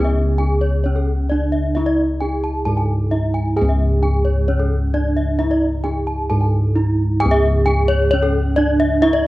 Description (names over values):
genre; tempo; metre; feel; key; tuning
Balinese gamelan; 132 BPM; 4/4; straight; C# pelog; A4 = 442 Hz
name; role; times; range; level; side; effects
gamelan-type bronze metallophone; melody; 0.0-9.3 s; C#4 to A4-40c; -22 LUFS; right 3 dB; none
gamelan-type bronze metallophone; arpeggios; 0.0-9.2 s; A4-40c to A5-40c; -22 LUFS; left 2 dB; none
gamelan-type bossed gongs; bass; 0.0-9.3 s; C#2 to G#4-45c; -17 LUFS; equal; none
room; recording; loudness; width
light reverb; worn, warbling old tape, cassette tape, warbly pitch drift; -15 LUFS; side -17 dB against mid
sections
0.0-9.3 A section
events
none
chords
none